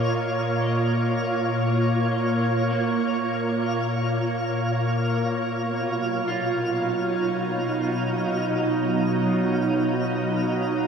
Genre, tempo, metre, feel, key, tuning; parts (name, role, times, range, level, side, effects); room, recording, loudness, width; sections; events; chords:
ambient; free time; Bb phrygian; A4 = 440 Hz
soft additive organ-like pad; sustained chords; 0.0-10.9 s; Bb2 to Db5; -23 LUFS; equal; ensemble chorus, built-in reverb
twinkling granular texture; texture; 0.0-10.9 s; F4 to F5; -29 LUFS; right 1 dB; built-in reverb
electric guitar through a small old amp; arpeggios; 2.7-8.6 s; Bb3 to F4; -34 LUFS; right 4 dB; lush chorus, diffuse ambient delay
wet shimmer reverb, RT60 8.8 s; dark, warm production; -22 LUFS; side -6 dB against mid
0.0-10.9 A section
fade-out on clean electric guitar 0.0-10.9
0.0 Bbm; 5.5 Badd9